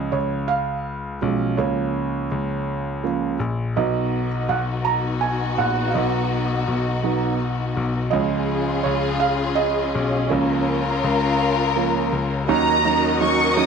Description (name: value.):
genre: six-eight pop ballad.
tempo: 55 BPM (dotted quarters).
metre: 6/8.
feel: straight.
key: unclear.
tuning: A4 = 440 Hz.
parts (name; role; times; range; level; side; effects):
felt-muted upright piano; accompaniment; 0.0-13.7 s; F3 to Bb5; -23 LUFS; right 8 dB; none.
clear grand piano; bass; 0.0-13.7 s; Bb1 to Eb2; -25 LUFS; left 3 dB; none.
dark studio string section; sustained chords; 3.8-13.7 s; B3 to Eb5; -23 LUFS; left 4 dB; none.
warm studio violin section; second line; 12.5-13.7 s; Bb5 to Eb6; -20 LUFS; right 2 dB; none.
room: moderate echo chamber reverb, RT60 1.2 s, small room ambience.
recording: none.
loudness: -19 LUFS.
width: side -6 dB against mid.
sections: 0.0-12.5 A section; 12.5-13.7 B section.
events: felt piano solo 0.0-12.5.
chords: 0.0 Db; 1.6 Bbm/Db; 3.8 B; 8.1 Db; 10.3 Bbm/Db; 12.5 Ebm7.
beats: 0.49 | 1.59 2.68 | 3.77 4.86 | 5.95 7.04 | 8.13 9.22 | 10.30 11.39 | 12.48 13.57.